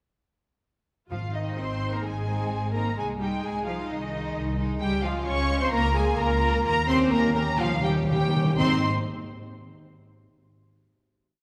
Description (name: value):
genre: classical, dramatic, fast romantic movement for symphony orchestra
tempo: 128 BPM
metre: 4/4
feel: uneven beats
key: Ab major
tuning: A4 = 441 Hz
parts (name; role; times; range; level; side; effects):
- warm symphonic violin section; melody; 1.1-8.9 s; Eb5 to Db6; -32 LUFS; equal; none
- rich symphonic viola section; accompaniment; 1.1-8.9 s; C4 to Db5; -34 LUFS; equal; none
- clear studio cello section; bass; 1.1-8.9 s; Eb3 to Db4; -32 LUFS; equal; none
- warm symphonic double bass section; bass; 1.1-8.9 s; Ab1 to Eb2; -32 LUFS; equal; none
- timpani; percussion; 1.1-1.8, 6.7-8.8 s; Ab2 to Eb3; -31 LUFS; equal; none
- rich studio violin section; second line; 1.4-8.9 s; Ab3 to C5; -36 LUFS; equal; none
room: wet scoring stage reverb, RT60 2.1 s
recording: none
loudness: -25 LUFS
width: mono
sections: 1.1-8.6 A section; 8.6-10.6 final chord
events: timpani fill 6.7-8.6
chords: 1.1 Ab; 3.0 Ab/C; 4.8 Db; 5.7 Bbm/Db; 6.7 Eb13; 8.6 Ab